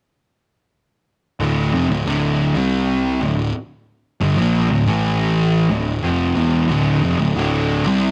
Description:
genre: metal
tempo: 91 BPM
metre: 4/4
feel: straight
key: D minor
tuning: A4 = 439 Hz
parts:
  - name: fuzz guitar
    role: riff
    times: 1.4-8.1 s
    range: D2 to C4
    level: -19 LUFS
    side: equal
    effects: distortion
  - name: fuzz picked electric bass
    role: bass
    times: 1.4-8.1 s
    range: D1 to C2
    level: -26 LUFS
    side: equal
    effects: overdrive, tube saturation
room: moderate stone room reverb, RT60 1.0 s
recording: rough rehearsal-room recording, warm saturation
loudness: -18 LUFS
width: mono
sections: 1.4-8.1 A section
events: none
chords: 1.4 Dm; 2.6 C5; 3.2 Dm; 4.9 A5; 5.7 Dm

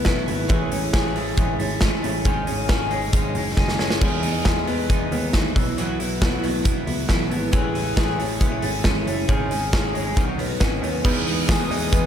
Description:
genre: jangly indie pop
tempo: 137 BPM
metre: 4/4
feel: straight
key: E major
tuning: A4 = 439 Hz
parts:
  - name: fingerpicked twelve-string acoustic guitar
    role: accompaniment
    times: 0.0-12.1 s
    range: G#2 to E4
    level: -27 LUFS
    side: right 4 dB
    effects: none
  - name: electric guitar through a small old amp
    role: arpeggios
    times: 0.0-12.1 s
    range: D#3 to G#4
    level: -26 LUFS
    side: left 4 dB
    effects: wide subtle chorus, slapback echo
  - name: picked electric bass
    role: bass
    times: 0.0-12.1 s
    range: F#1 to E2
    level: -29 LUFS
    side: equal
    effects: none
  - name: big rock drum kit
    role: drums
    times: 0.0-12.0 s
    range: crash cymbal, hi-hat, kick drum, snare drum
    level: -22 LUFS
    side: equal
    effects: none
  - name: warm analog keys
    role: accompaniment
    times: 11.0-12.1 s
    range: B3 to B4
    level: -29 LUFS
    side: right 4 dB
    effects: chorus
  - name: hollow soft pad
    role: sustained chords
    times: 11.0-12.1 s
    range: B4 to D#6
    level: -31 LUFS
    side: left 1 dB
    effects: chorus
room: moderate lush hall reverb, RT60 1.8 s, studio reverb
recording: big arena sound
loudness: -19 LUFS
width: side -9 dB against mid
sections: 0.0-11.0 A section; 11.0-12.1 B section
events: drum fill 3.6-4.0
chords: 0.0 Bsus4; 0.5 Amaj7; 2.3 G#sus4; 4.0 Emaj7; 5.6 Bsus4; 7.5 Amaj7; 9.3 G#sus4; 10.2 Badd9; 11.0 Emaj7

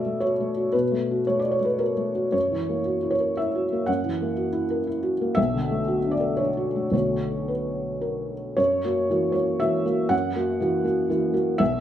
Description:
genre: neoclassical minimalist piano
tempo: 106-124 BPM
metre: 3/4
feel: rubato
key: unclear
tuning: A4 = 440 Hz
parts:
  - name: felt-muted upright piano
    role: solo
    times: 0.0-11.8 s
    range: B1 to F#5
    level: -22 LUFS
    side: equal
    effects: none
room: moderate large studio reverb, RT60 1.1 s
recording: band playing live in one room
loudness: -22 LUFS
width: side -10 dB against mid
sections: 0.0-8.6 A section; 8.6-11.8 A section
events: none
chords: 0.0 Bm7; 2.4 F#7; 5.4 Bm7; 8.6 F#7

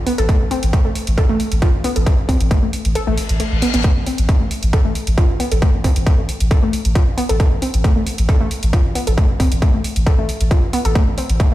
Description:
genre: driving peak-time techno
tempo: 135 BPM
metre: 4/4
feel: straight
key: A minor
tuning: A4 = 438 Hz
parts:
  - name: saturated sub bass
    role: bass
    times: 0.0-11.5 s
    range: A1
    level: -20 LUFS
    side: equal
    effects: overdrive, sidechain pumping, low-pass filter
  - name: warbly dusty pluck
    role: riff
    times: 0.1-11.5 s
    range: A3 to A4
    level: -22 LUFS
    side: left 1 dB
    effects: chorus, sidechain pumping, ping-pong delay
  - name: electronic hi-hat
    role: drums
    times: 0.1-11.5 s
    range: none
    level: -29 LUFS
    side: right 1 dB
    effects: overdrive
  - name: electronic kick drum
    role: drums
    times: 0.3-11.5 s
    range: none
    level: -16 LUFS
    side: equal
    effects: distortion, overdrive
  - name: reverse cymbal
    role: sound effects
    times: 3.1-3.8 s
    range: none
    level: -28 LUFS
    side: left 5 dB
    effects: none
room: digital ambience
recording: played on a big sound system in a bare room, stone room reverb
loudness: -14 LUFS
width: side -15 dB against mid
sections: 0.0-11.5 A section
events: kick drops out 3.0-3.8; reverse cymbal 3.1-3.8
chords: none

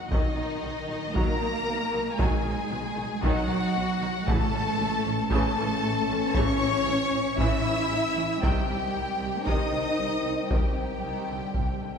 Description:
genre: cinematic, epic orchestral film score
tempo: 116 BPM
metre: 4/4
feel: straight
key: unclear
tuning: A4 = 440 Hz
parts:
  - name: rich symphonic violin section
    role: melody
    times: 0.0-12.0 s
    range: D#5 to E6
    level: -32 LUFS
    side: left 2 dB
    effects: none
  - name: warm symphonic violin section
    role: second line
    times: 0.0-12.0 s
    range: D#4 to E5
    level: -32 LUFS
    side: left 3 dB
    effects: none
  - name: dark symphonic cello section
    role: bass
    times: 0.0-12.0 s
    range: D#3 to E4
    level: -31 LUFS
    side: right 3 dB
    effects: none
  - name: warm symphonic viola section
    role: accompaniment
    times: 0.1-12.0 s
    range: C3 to D#4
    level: -34 LUFS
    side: right 2 dB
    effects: none
  - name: mellow French horn section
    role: sustained chords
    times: 0.1-12.0 s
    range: Eb3 to D#4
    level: -34 LUFS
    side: left 4 dB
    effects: none
  - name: rich symphonic double bass section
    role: bass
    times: 0.1-11.9 s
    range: A1 to C2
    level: -35 LUFS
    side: right 2 dB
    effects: none
  - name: solo taiko drums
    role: drums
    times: 0.1-12.0 s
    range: none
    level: -28 LUFS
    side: equal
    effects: none
room: wet scoring stage reverb, RT60 2.0 s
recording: heard from further back in the room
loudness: -24 LUFS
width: side -6 dB against mid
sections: 0.0-12.0 A section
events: none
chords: 0.1 B; 4.3 A; 8.4 Cm

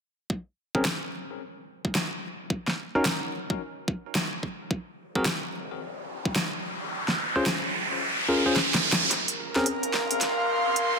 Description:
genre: glitch hop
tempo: 109 BPM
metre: 4/4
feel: swing 62% on 16ths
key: Bb minor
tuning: A4 = 440 Hz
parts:
  - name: electronic kick drum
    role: drums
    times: 0.3-6.3 s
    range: none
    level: -28 LUFS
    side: equal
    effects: high-pass filter on kick
  - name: bell-like tine electric piano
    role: stabs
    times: 0.7-9.7 s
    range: C4 to C5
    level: -29 LUFS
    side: left 1 dB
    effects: vintage 12-bit sampler grit, sidechain pumping, low-pass filter, ping-pong delay
  - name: pop drum kit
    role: drums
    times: 0.9-10.9 s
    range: hi-hat, snare drum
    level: -28 LUFS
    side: equal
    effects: high-pass filter on snare, high-pass filter on hats
  - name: riser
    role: sound effects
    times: 5.7-11.0 s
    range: none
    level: -28 LUFS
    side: right 2 dB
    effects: none
  - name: airy breathy pad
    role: texture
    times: 9.1-11.0 s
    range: Bb4 to C6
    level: -26 LUFS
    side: right 1 dB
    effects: chorus, sidechain pumping
room: wet lush hall reverb, RT60 1.9 s, digital ambience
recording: dense, heavily limited modern master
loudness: -25 LUFS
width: side -5 dB against mid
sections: 0.3-9.1 A section; 9.1-11.0 B section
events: riser 5.7-9.1, 9.1-11.0; kick drops out 6.9-9.1; drum fill 8.6-9.1, 9.1-11.0; build-up 9.1-11.0; filter sweep 9.1-11.0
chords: 0.3 Bbm9; 2.5 Gb6; 4.7 Ab9; 6.9 Dbmaj7; 9.1 Bbsus2

